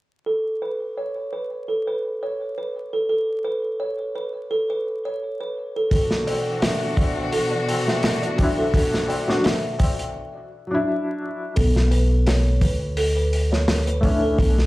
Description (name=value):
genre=trip hop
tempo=85 BPM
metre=4/4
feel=swing 55% on 16ths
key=B minor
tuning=A4 = 440 Hz
part: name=music box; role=arpeggios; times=0.3-14.6 s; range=A4 to E5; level=-25 LUFS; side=right 1 dB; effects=vintage 12-bit sampler grit, low-pass filter, tape echo
part: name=rich chamber string section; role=sustained chords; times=5.9-10.1 s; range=B2 to F#4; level=-27 LUFS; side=left 1 dB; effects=none
part: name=crunchy breakbeat drum kit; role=drums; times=5.9-14.7 s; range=hi-hat, kick drum, snare drum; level=-23 LUFS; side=equal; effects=none
part: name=tabla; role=percussion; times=5.9-10.1 s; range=none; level=-34 LUFS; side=left 1 dB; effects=none
part: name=felt-muted upright piano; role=accompaniment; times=8.4-14.7 s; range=F#3 to F#4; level=-24 LUFS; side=left 1 dB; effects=tremolo, low-pass filter, tape echo
part: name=upright bass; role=bass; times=11.6-14.7 s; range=B1 to D2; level=-19 LUFS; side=equal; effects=none
room=light reverb, small room ambience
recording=played on a big sound system in a bare room, large studio reverb, vinyl crackle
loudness=-20 LUFS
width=side -18 dB against mid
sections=0.3-11.6 A section; 11.6-14.7 B section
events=break 10.1-11.6; filter sweep on felt piano 11.6-14.7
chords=0.3 Bsus2; 5.9 Dadd9/B; 11.6 Bm11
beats=| 0.27 0.97 1.68 2.38 | 3.09 3.80 4.50 5.21 | 5.91 6.62 7.33 8.03 | 8.74 9.44 10.15 10.86 | 11.56 12.27 12.97 13.68 | 14.38